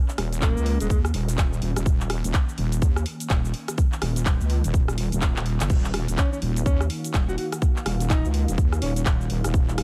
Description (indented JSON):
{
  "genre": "bass house",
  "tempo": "125 BPM",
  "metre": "4/4",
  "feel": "swing 60% on 16ths",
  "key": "Eb minor",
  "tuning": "A4 = 445 Hz",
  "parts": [
    { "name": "sweeping resonant pad", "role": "sustained chords", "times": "0.0-9.8 s", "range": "Eb3 to Gb4", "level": "-38 LUFS", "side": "equal", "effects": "none" },
    { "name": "garage drum kit", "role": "drums", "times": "0.1-9.8 s", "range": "cabasa, crash cymbal, handclaps, hi-hat, rim click", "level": "-33 LUFS", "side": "equal", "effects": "studio reverb" },
    { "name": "wobble bass", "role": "bass", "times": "0.2-9.8 s", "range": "Eb1 to Eb2", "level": "-27 LUFS", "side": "equal", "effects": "chorus, tube saturation, sidechain pumping" },
    { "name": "mellow alto saxophone", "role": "melody", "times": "0.4-1.0, 6.2-9.0 s", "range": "Ab3 to Gb4", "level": "-34 LUFS", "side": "equal", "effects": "delay" },
    { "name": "electronic kick drum", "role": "drums", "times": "0.4-9.7 s", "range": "none", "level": "-24 LUFS", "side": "equal", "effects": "studio reverb" },
    { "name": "deep dark ambient pad", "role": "texture", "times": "6.4-9.8 s", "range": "Eb4 to F5", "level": "-40 LUFS", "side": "equal", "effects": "chorus, built-in reverb, sidechain pumping" }
  ],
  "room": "digital ambience",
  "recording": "none",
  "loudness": "-24 LUFS",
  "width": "mono",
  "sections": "0.0-9.8 A section",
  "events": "drum fill 5.3-5.7",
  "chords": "0.0 Ebm"
}